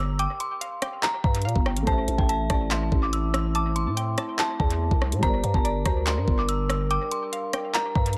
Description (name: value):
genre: hip hop, drill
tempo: 143 BPM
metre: 4/4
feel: half-time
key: unclear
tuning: A4 = 440 Hz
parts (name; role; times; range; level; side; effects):
- dark detuned synth bell; melody; 0.0-8.2 s; G5 to E6; -32 LUFS; equal; chorus, low-pass filter, dub echo
- dark concert grand piano; accompaniment; 0.0-8.2 s; G3 to E5; -40 LUFS; equal; low-pass filter, dub echo
- growling 808-style bass; bass; 0.0-8.2 s; G1 to Bb2; -28 LUFS; equal; none
- mallet-like synth pluck; second line; 0.2-8.1 s; C5 to C6; -38 LUFS; equal; chorus, dub echo
- drill drum kit; drums; 0.2-8.2 s; handclaps, hi-hat, kick drum, rim click; -29 LUFS; equal; dub echo
- mellow brass ensemble; sustained chords; 1.9-8.2 s; G3 to Bb4; -36 LUFS; equal; none
room: light reverb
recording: echo-heavy mix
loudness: -25 LUFS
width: mono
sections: 0.0-8.2 A section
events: none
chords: 0.0 Gm; 1.9 Am; 5.2 Gm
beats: | 0.19 0.61 1.03 1.45 | 1.87 2.29 2.71 3.13 | 3.55 3.97 4.39 4.81 | 5.23 5.65 6.07 6.49 | 6.91 7.33 7.75 8.16